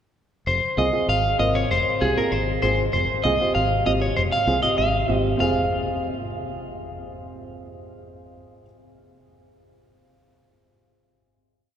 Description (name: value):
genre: latin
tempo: 195 BPM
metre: 4/4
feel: straight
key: F minor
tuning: A4 = 440 Hz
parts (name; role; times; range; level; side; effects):
- electric guitar at the edge of break-up; melody; 0.5-8.6 s; Ab4 to F5; -22 LUFS; equal; spring reverb
- fingered electric bass; bass; 0.5-8.6 s; F1 to C2; -26 LUFS; left 1 dB; none
- warm upright piano; accompaniment; 0.8-8.7 s; C4 to Bb4; -27 LUFS; right 2 dB; none
room: wet cathedral reverb, RT60 6.2 s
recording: recorded in a church or concert hall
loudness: -19 LUFS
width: side -9 dB against mid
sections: 0.5-5.4 A section; 5.4-7.9 final chord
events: none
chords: 0.5 Fm